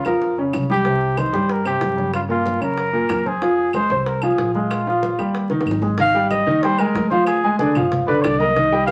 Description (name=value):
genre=Afro-Cuban jazz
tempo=187 BPM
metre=4/4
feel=straight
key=F minor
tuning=A4 = 440 Hz
part: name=breathy trumpet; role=melody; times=0.0-8.9 s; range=F4 to F5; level=-23 LUFS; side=equal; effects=none
part: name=claves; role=percussion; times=0.0-8.9 s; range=none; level=-37 LUFS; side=equal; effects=none
part: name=warm upright piano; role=accompaniment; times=0.1-8.9 s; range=Bb2 to Bb5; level=-22 LUFS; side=equal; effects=none
part: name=upright bass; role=bass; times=0.1-8.9 s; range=G1 to G2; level=-30 LUFS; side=equal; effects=none
part: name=bongos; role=percussion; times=0.1-8.9 s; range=none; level=-32 LUFS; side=equal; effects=none
part: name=congas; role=percussion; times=0.1-8.9 s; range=none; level=-32 LUFS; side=equal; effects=none
room=wet studio reverb, RT60 0.5 s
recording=vinyl crackle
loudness=-19 LUFS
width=mono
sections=0.0-6.0 A section; 6.0-8.9 B section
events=drum fill 0.1-0.9, 5.5-6.0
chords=0.0 Db6; 0.9 Cm; 2.1 Gm7b5; 2.8 Gb; 3.4 Fm; 4.7 Bb5; 5.3 Eb; 6.0 Absus2; 7.3 Ddim; 7.9 G7